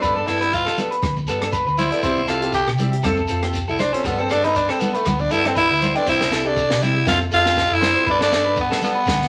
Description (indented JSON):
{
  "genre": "highlife guitar band",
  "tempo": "119 BPM",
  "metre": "4/4",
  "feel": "swing 54% on 16ths",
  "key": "unclear",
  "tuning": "A4 = 441 Hz",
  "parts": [
    { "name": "growling tenor saxophone", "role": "melody", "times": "0.0-9.3 s", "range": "A3 to G4", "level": "-22 LUFS", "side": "equal", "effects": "none" },
    { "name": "picked acoustic archtop guitar", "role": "accompaniment", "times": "0.0-9.0 s", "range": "F3 to A4", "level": "-30 LUFS", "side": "equal", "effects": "none" },
    { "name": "clean electric guitar", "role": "arpeggios", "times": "0.0-9.2 s", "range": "G4 to G5", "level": "-26 LUFS", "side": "equal", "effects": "none" },
    { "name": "hollow-body short-scale fingered electric bass", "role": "bass", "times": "0.0-9.3 s", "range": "C2 to G3", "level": "-29 LUFS", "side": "equal", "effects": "none" },
    { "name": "compact cocktail drum kit", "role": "drums", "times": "0.0-9.3 s", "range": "crash cymbal, hi-hat, kick drum, rim click, snare drum", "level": "-30 LUFS", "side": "equal", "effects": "none" },
    { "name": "shekere", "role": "percussion", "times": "0.0-9.3 s", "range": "none", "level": "-36 LUFS", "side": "equal", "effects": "none" },
    { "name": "congas", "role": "percussion", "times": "0.2-9.3 s", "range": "none", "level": "-31 LUFS", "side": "equal", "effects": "none" }
  ],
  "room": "wet studio reverb, RT60 0.6 s",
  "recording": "vinyl crackle",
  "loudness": "-19 LUFS",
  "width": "mono",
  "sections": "0.0-6.1 A section; 6.1-9.3 B section",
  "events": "tenor saxophone solo 0.0-6.1",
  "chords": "0.0 Gadd9; 2.0 C; 3.0 F; 4.1 Gadd9; 6.1 C; 7.1 F; 8.1 Gadd9",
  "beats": "| 0.03 0.53 1.03 1.54 | 2.04 2.54 3.04 3.55 | 4.05 4.55 5.06 5.56 | 6.06 6.56 7.07 7.57 | 8.07 8.57 9.08"
}